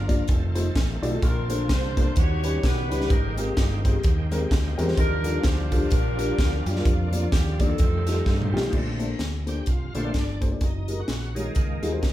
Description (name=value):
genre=uptempo gospel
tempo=128 BPM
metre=4/4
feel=swing 58% on 8ths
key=Bb major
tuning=A4 = 442 Hz
part: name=warm saxophone section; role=melody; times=0.0-8.5 s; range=Bb3 to Db5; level=-31 LUFS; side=equal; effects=none
part: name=bright tonewheel organ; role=sustained chords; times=0.0-12.1 s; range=Bb2 to F#5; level=-34 LUFS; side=equal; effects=slow rotary speaker, overdrive, chorus vibrato
part: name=fingered electric bass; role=bass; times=0.0-12.1 s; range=F1 to G2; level=-27 LUFS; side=equal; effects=none
part: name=dark upright piano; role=accompaniment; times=0.1-12.1 s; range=Ab2 to D5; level=-29 LUFS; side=left 2 dB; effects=none
part: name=crisp fusion drum kit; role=drums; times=0.1-12.1 s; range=crash cymbal, hi-hat, kick drum, snare drum, toms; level=-24 LUFS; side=equal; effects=none
room=moderate large studio reverb, RT60 0.9 s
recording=band playing live in one room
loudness=-21 LUFS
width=side -14 dB against mid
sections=0.0-8.7 A section; 8.7-12.1 B section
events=drum fill 8.3-8.7; tonewheel organ solo 8.7-12.1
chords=0.3 F7; 1.2 Bbmaj9; 2.2 Eb7alt; 3.1 Abmaj9; 5.0 Ebmaj9#11; 6.9 Bb/F; 7.8 F9; 8.7 Bbmaj9; 10.6 Gb69